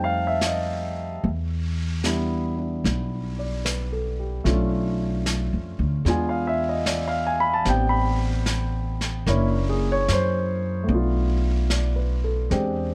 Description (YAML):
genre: jazz ballad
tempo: 74 BPM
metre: 4/4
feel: swing 69% on 8ths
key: unclear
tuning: A4 = 438 Hz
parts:
  - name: warm concert grand piano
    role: accompaniment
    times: 0.0-12.9 s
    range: G3 to B5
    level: -28 LUFS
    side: equal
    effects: none
  - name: upright bass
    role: bass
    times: 0.0-12.9 s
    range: F#1 to F#2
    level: -27 LUFS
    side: equal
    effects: none
  - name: vintage brush drum kit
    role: drums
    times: 0.4-12.9 s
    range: brushed snare drum, hi-hat, snare drum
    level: -34 LUFS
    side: equal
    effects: none
room: light reverb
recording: none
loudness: -24 LUFS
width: mono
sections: 0.0-12.9 A section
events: none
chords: 0.0 F9; 1.2 Em7; 4.5 Bm7b5; 6.1 E7b9; 7.7 Am11; 9.3 F#7b13; 10.9 Bm7b5